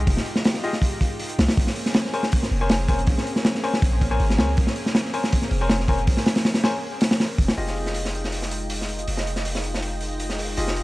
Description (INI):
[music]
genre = drum and bass, jungle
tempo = 160 BPM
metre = 4/4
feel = straight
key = F minor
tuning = A4 = 440 Hz
[part]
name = lush unison pad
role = sustained chords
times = 0.0-10.8 s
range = Ab3 to G5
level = -31 LUFS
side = equal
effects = chorus, vintage 12-bit sampler grit
[part]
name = long sustained 808-style bass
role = bass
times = 0.0-10.8 s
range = F1 to Db2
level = -25 LUFS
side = equal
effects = none
[part]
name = crunchy breakbeat drum kit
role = drums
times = 0.1-10.8 s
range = hi-hat, kick drum, snare drum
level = -22 LUFS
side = equal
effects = high-pass filter on kick, high-pass filter on hats, high-pass filter on snare, high-pass filter on room
[part]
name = clear baby grand piano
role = stabs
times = 0.6-10.8 s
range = F4 to Ab5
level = -30 LUFS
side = left 2 dB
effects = low-pass filter, dub echo
[part]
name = backwards swelling texture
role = texture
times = 8.6-10.8 s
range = Eb5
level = -37 LUFS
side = right 5 dB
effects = built-in reverb
[sound]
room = light reverb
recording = dry, gritty hardware recording, vinyl crackle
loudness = -20 LUFS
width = side -19 dB against mid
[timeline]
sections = 0.0-7.6 A section; 7.6-10.8 B section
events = drop 0.0-7.6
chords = 0.0 Fm9; 1.6 Bbm9; 7.6 Fm9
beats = | 0.07 0.45 0.82 1.20 | 1.57 1.95 2.33 2.70 | 3.08 3.45 3.83 4.20 | 4.58 4.95 5.33 5.70 | 6.08 6.45 6.83 7.20 | 7.58 7.95 8.32 8.70 | 9.07 9.45 9.82 10.20 | 10.57